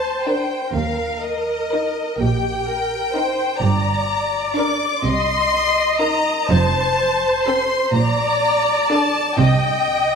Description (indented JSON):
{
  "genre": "classical, slow romantic movement for string orchestra",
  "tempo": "41 BPM (dotted quarters)",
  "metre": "6/8",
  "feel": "rubato",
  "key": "unclear",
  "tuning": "A4 = 439 Hz",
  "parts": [
    { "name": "rich studio violin section", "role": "melody", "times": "0.0-10.2 s", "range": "Eb5 to D6", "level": "-21 LUFS", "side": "left 4 dB", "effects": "none" },
    { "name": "warm studio viola section", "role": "accompaniment", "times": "0.0-10.2 s", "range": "G4 to Eb5", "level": "-21 LUFS", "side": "equal", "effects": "none" },
    { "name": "rich studio cello section", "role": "bass", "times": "0.0-10.2 s", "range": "D2 to C3", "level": "-22 LUFS", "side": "right 3 dB", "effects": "none" },
    { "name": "rich studio double bass section", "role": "bass", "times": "0.0-10.2 s", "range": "F1 to Eb2", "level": "-24 LUFS", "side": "right 4 dB", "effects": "none" },
    { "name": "rich studio violin section", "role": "second line", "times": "0.3-9.3 s", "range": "C4 to Bb4", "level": "-24 LUFS", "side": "left 1 dB", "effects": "none" }
  ],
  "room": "wet recital hall reverb, RT60 1.6 s",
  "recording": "none",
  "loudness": "-16 LUFS",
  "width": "side -6 dB against mid",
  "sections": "0.0-10.2 A section",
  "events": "none",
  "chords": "0.0 Gm; 0.7 Eb; 3.6 Gm; 5.0 Cm7; 6.5 F; 7.9 Bbmaj7; 9.4 Cm"
}